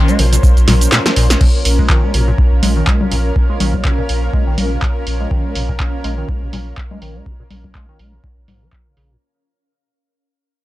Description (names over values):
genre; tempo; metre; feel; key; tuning
acid house; 123 BPM; 4/4; swing 56% on 16ths; Bb minor; A4 = 445 Hz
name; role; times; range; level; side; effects
lush unison pad; sustained chords; 0.0-9.2 s; F3 to C5; -26 LUFS; equal; chorus, sidechain pumping
liquid acid bass; riff; 0.0-9.2 s; Ab2 to Ab3; -21 LUFS; equal; phaser
granular cloud pad; texture; 0.0-9.2 s; Db4 to F5; -25 LUFS; equal; built-in reverb, sidechain pumping
punchy analog drum machine; drums; 0.1-9.1 s; cabasa, congas, crash cymbal, handclaps, hi-hat, snare drum; -18 LUFS; left 1 dB; low-pass filter on perc, low-pass filter on hats, low-pass filter on snare, low-pass filter on cymbals
warm sub bass; bass; 0.2-9.2 s; Bb1; -16 LUFS; equal; sidechain pumping
electronic kick drum; drums; 0.4-8.8 s; none; -14 LUFS; equal; none
room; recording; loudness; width
little or no reverb; dark, warm production; -12 LUFS; side -16 dB against mid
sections
0.0-1.4 A section; 1.4-9.2 B section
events
drop 0.0-1.4; drum fill 0.7-1.4; kick drops out 0.9-1.4; fade-out 1.4-9.2; filter sweep on drum 1.4-9.2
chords
0.0 Bbm